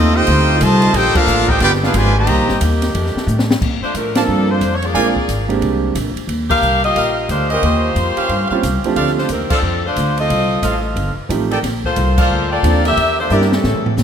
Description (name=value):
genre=jazz, big band swing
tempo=180 BPM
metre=4/4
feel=swing 63% on 8ths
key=Bb major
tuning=A4 = 439 Hz
part: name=brilliant trumpet section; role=melody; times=0.0-2.6 s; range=C4 to Bb5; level=-16 LUFS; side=equal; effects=none
part: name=brilliant trombone section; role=second line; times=0.0-2.6, 13.5-14.0 s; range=C3 to G4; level=-21 LUFS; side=right 3 dB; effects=none
part: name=bright saxophone section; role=sustained chords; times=0.0-3.6 s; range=D3 to G4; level=-24 LUFS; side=left 1 dB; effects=none
part: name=upright bass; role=bass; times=0.0-14.0 s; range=G1 to Bb2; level=-18 LUFS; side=equal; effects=none
part: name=open jazz drum kit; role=drums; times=0.3-14.0 s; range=crash cymbal, hi-hat, kick drum, ride cymbal, snare drum, toms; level=-23 LUFS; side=equal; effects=none
part: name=clear saxophone section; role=melody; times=3.8-14.0 s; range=F3 to F5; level=-18 LUFS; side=left 2 dB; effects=none
part: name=clear baby grand piano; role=accompaniment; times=4.2-5.9, 8.5-9.3, 11.3-13.5 s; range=F3 to Bb4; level=-20 LUFS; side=right 5 dB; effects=none
part: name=warm trumpet section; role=stabs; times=4.2-13.6 s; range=Db4 to A5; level=-22 LUFS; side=right 2 dB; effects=none
room=light reverb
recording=none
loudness=-13 LUFS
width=side -8 dB against mid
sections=0.0-3.6 A section; 3.6-14.0 B section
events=band accent 1.1, 4.1, 6.5, 9.5, 12.1; drum fill 3.3-3.6, 13.3-14.0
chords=0.0 F7; 0.9 Bbmaj7; 1.6 G7b9; 2.3 Cm7; 2.9 F13; 3.6 Bbmaj7; 4.9 Bb7; 6.3 Ebmaj9; 7.6 Eb13; 9.0 Dm7; 10.3 F7; 11.6 Bbmaj7; 13.0 Em7b5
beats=0.28 0.61 | 0.94 1.27 1.61 1.94 | 2.28 2.61 2.94 3.28 | 3.61 3.94 4.28 4.61 | 4.95 5.28 5.62 5.95 | 6.29 6.62 6.95 7.29 | 7.62 7.96 8.29 8.62 | 8.96 9.29 9.63 9.96 | 10.29 10.63 10.96 11.30 | 11.63 11.96 12.30 12.63 | 12.97 13.30 13.63 13.97